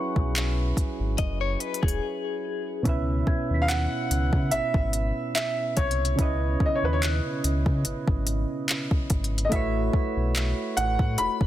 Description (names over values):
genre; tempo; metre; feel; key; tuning
contemporary R&B; 72 BPM; 4/4; swing 54% on 16ths; C# minor; A4 = 439 Hz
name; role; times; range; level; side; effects
soft electric-piano-like synth keys; accompaniment; 0.0-11.5 s; B2 to E5; -30 LUFS; right 2 dB; chorus
worn celesta; texture; 0.0-9.6 s; C#6 to B6; -39 LUFS; left 4 dB; ping-pong delay
sub bass with octave; bass; 0.2-11.5 s; E1 to C#3; -27 LUFS; equal; none
smooth R&B drum kit; drums; 0.2-11.5 s; handclaps, hi-hat, kick drum; -26 LUFS; equal; overdrive
direct-recorded clean electric guitar; arpeggios; 1.2-2.8 s; G#4 to D#5; -31 LUFS; left 9 dB; tremolo, ping-pong delay
clear baby grand piano; melody; 3.6-11.5 s; B4 to B5; -29 LUFS; equal; ping-pong delay
room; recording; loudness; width
digital ambience; dense, heavily limited modern master; -23 LUFS; side -13 dB against mid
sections
0.0-2.9 A section; 2.9-11.5 B section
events
break 2.0-2.9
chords
0.0 F#9sus4; 2.9 C#m7; 9.5 A69